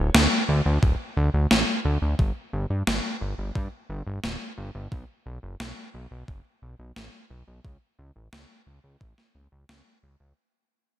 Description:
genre	synthwave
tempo	88 BPM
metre	4/4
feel	straight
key	unclear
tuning	A4 = 440 Hz
part	fat analog bass	bass	0.0-10.3 s	D1 to G2	-25 LUFS	equal	sidechain pumping
part	electronic snare drum	drums	0.1-9.8 s	none	-23 LUFS	equal	gated reverb, gated reverb snare, overdrive
part	electronic kick drum	drums	0.8-9.1 s	none	-24 LUFS	equal	overdrive
room	light reverb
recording	bright 1980s-style digital production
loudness	-22 LUFS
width	side -12 dB against mid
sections	0.0-10.4 A section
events	fade-out 0.0-10.4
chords	none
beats	0.14 0.83 1.51 | 2.19 2.87 3.55 4.24 | 4.92 5.60 6.28 6.96 | 7.64 8.33 9.01 9.69

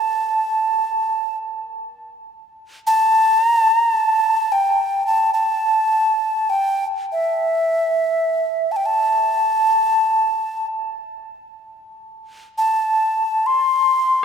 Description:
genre	world meditative, free-time meditation music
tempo	free time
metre	none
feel	none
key	A minor pentatonic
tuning	A4 = 440 Hz
part	breathy alto ocarina	melody	0.0-14.2 s	E5 to C6	-16 LUFS	equal	none
part	tubular bells	texture	0.0-2.0 s	G4	-38 LUFS	right 1 dB	none
room	wet cathedral reverb, RT60 4.4 s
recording	none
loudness	-16 LUFS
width	side -7 dB against mid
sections	0.0-14.2 A section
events	none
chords	none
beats	free time

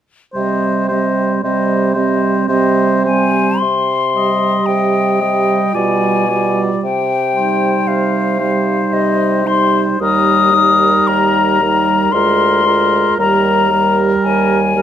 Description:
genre	classical, slow romantic movement for wind quintet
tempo	56 BPM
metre	3/4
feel	rubato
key	C minor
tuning	A4 = 440 Hz
part	warm oboe	second line	0.3-14.8 s	Bb4 to Eb5	-19 LUFS	left 1 dB	none
part	warm French horn	accompaniment	0.3-14.8 s	G3 to Ab3	-19 LUFS	right 3 dB	none
part	concert flute	melody	0.4-14.8 s	Eb5 to Eb6	-16 LUFS	left 6 dB	none
part	dark clarinet	accompaniment	0.4-14.8 s	C4 to G4	-21 LUFS	right 10 dB	none
part	warm bassoon	bass	0.4-14.8 s	D2 to C3	-20 LUFS	right 2 dB	none
room	moderate recital hall reverb, RT60 1.6 s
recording	close, detailed microphones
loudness	-12 LUFS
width	side -10 dB against mid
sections	0.4-3.6 A section; 3.6-14.8 B section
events	none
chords	0.4 Cm; 5.7 G7/B; 6.8 Cm; 10.0 Eb; 12.1 Bb7/D; 13.2 Eb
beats	| 0.35 1.44 2.50 | 3.61 4.67 5.74 | 6.83 7.87 8.93 | 10.00 11.07 12.13 | 13.18 14.24

